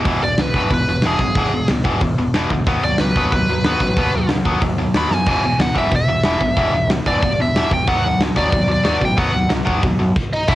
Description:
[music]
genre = punk rock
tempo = 184 BPM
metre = 4/4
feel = straight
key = E major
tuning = A4 = 440 Hz
[part]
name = tight distorted guitar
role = riff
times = 0.0-10.6 s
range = E2 to B3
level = -19 LUFS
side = equal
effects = distortion, cassette tape
[part]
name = growling picked electric bass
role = bass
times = 0.0-10.6 s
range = E1 to F#2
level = -24 LUFS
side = equal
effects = overdrive
[part]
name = big rock drum kit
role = drums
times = 0.1-10.6 s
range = crash cymbal, hi-hat, kick drum, snare drum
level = -20 LUFS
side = equal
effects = cassette tape
[part]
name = biting lead guitar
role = melody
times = 0.2-10.6 s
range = D#4 to B5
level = -20 LUFS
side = equal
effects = overdrive, cassette tape
[sound]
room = small room ambience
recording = home recording on cassette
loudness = -15 LUFS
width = side -15 dB against mid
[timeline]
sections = 0.1-10.5 A section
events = lead electric guitar solo 0.1-10.5; drum fill 5.1; stop 10.2-10.5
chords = 0.1 E; 2.7 B; 5.3 E5; 7.9 B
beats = | 0.06 0.38 0.71 1.03 | 1.36 1.69 2.01 2.34 | 2.66 2.99 3.31 3.64 | 3.96 4.29 4.62 4.94 | 5.27 5.59 5.92 6.25 | 6.57 6.90 7.22 7.55 | 7.88 8.20 8.53 8.85 | 9.18 9.51 9.83 10.16 | 10.48

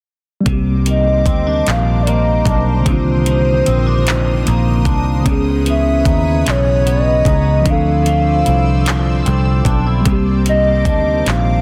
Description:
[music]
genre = slow six-eight R&B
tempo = 50 BPM (dotted quarters)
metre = 6/8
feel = straight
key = unclear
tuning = A4 = 440 Hz
[part]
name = mellow tine electric piano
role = accompaniment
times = 0.4-11.6 s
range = Db3 to A4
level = -22 LUFS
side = equal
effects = none
[part]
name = clean electric guitar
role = second line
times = 0.5-11.6 s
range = C3 to E4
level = -26 LUFS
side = equal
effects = analog chorus, tape echo
[part]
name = soft additive organ-like pad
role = sustained chords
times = 0.7-11.6 s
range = Bb4 to E6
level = -30 LUFS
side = equal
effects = ensemble chorus, built-in reverb
[part]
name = vintage muted fingered electric bass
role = bass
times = 0.5-11.6 s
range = Bb1 to Eb2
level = -18 LUFS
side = equal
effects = none
[part]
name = smooth R&B drum kit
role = drums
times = 0.5-11.5 s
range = handclaps, hi-hat, kick drum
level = -21 LUFS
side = equal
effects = none
[part]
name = hollow clarinet-like synth lead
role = melody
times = 0.9-11.6 s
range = C5 to F5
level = -21 LUFS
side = equal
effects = chorus
[sound]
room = little or no reverb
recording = dense, heavily limited modern master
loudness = -14 LUFS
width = mono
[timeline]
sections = 0.5-11.6 A section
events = none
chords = 0.5 Cm9; 5.3 Dbm9; 7.7 Dm9; 10.1 Cm9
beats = | 0.46 1.66 | 2.86 4.06 | 5.26 6.46 | 7.66 8.86 | 10.06 11.26

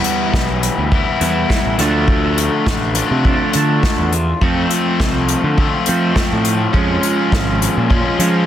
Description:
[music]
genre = indie rock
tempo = 103 BPM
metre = 4/4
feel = straight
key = F lydian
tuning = A4 = 440 Hz
[part]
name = overdriven electric guitar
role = riff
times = 0.0-8.5 s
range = D3 to F4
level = -18 LUFS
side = left 5 dB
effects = none
[part]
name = raw garage guitar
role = riff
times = 0.0-8.5 s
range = F3 to E4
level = -21 LUFS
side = right 7 dB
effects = overdrive, analog chorus, tape echo
[part]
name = unplugged drum kit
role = drums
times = 0.0-8.3 s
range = hi-hat, kick drum, snare drum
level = -18 LUFS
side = equal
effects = none
[part]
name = fuzz picked electric bass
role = bass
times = 0.3-8.4 s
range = Ab1 to F3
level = -19 LUFS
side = equal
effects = overdrive
[sound]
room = small room ambience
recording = dense, heavily limited modern master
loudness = -13 LUFS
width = side -11 dB against mid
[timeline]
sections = 0.0-8.5 A section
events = none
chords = 0.0 Em; 1.8 Dm; 4.4 F; 6.7 Db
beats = 0.35 0.93 1.51 | 2.09 2.68 3.26 3.84 | 4.42 5.00 5.58 6.17 | 6.75 7.33 7.91

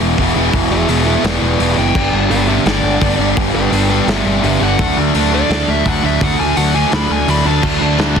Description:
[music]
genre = punk rock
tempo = 169 BPM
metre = 4/4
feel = straight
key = unclear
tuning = A4 = 440 Hz
[part]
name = distorted electric guitar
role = riff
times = 0.0-8.2 s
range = E2 to D4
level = -18 LUFS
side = left 15 dB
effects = overdrive
[part]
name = overdriven semi-hollow guitar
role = riff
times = 0.0-8.2 s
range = G2 to E4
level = -18 LUFS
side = right 14 dB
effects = none
[part]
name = growling picked electric bass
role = bass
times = 0.0-8.2 s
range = E1 to D2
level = -18 LUFS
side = equal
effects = overdrive
[part]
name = loose indie drum kit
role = drums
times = 0.2-8.2 s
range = crash cymbal, hi-hat, kick drum, snare drum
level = -21 LUFS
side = equal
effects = none
[part]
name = dark smooth lead guitar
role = melody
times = 0.7-7.6 s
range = G4 to B5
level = -20 LUFS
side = equal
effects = overdrive, digital delay
[part]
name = heavy high-gain guitar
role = riff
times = 7.6-8.2 s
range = D3 to D4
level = -22 LUFS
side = right 1 dB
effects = distortion
[sound]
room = little or no reverb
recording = dense, heavily limited modern master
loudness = -12 LUFS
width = side -6 dB against mid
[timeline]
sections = 0.0-7.6 A section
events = half time 0.0-7.6; lead electric guitar solo 0.0-7.6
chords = 0.0 E; 2.0 G; 4.8 D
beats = 0.19 | 0.54 0.90 1.25 1.61 | 1.96 2.32 2.67 3.02 | 3.38 3.73 4.09 4.45 | 4.80 5.16 5.51 5.87 | 6.22 6.58 6.93 7.29 | 7.64 8.00

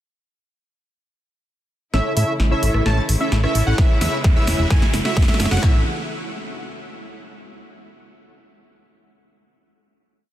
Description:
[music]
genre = EDM, festival progressive house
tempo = 130 BPM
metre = 4/4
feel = straight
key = A major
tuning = A4 = 437 Hz
[part]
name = clear studio string section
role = sustained chords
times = 1.9-5.8 s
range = C#3 to E4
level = -30 LUFS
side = left 2 dB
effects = sidechain pumping
[part]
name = wide unison lead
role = arpeggios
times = 1.9-5.8 s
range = E5 to A5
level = -27 LUFS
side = right 1 dB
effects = sidechain pumping, dub echo
[part]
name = supersaw chords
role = riff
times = 1.9-5.8 s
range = C#4 to A5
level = -26 LUFS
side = equal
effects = wide subtle chorus, cassette tape, sidechain pumping, low-pass filter, dub echo
[part]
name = fat analog bass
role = bass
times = 1.9-5.8 s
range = E1 to A2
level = -20 LUFS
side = equal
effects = sidechain pumping
[part]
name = big-room dance drum kit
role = drums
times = 1.9-5.7 s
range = hi-hat, rim click, snare drum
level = -26 LUFS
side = right 1 dB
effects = none
[part]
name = riser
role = sound effects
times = 3.4-5.6 s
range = none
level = -34 LUFS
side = right 1 dB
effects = none
[part]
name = big-room dance drum kit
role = drums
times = 3.8-5.7 s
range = handclaps, kick drum, snare drum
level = -16 LUFS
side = equal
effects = none
[sound]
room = light reverb, digital ambience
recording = dense, heavily limited modern master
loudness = -16 LUFS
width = side -13 dB against mid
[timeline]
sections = 1.9-5.6 build; 5.6-7.5 final chord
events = build-up 1.9-5.6; drum fill 1.9-5.6; filter sweep on supersaw synth 1.9-5.6; riser 3.4-5.6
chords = 1.9 A; 3.8 E6; 4.7 F#m7; 5.6 A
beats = | 1.94 2.40 2.86 3.32 | 3.78 4.24 4.71 5.17 | 5.63

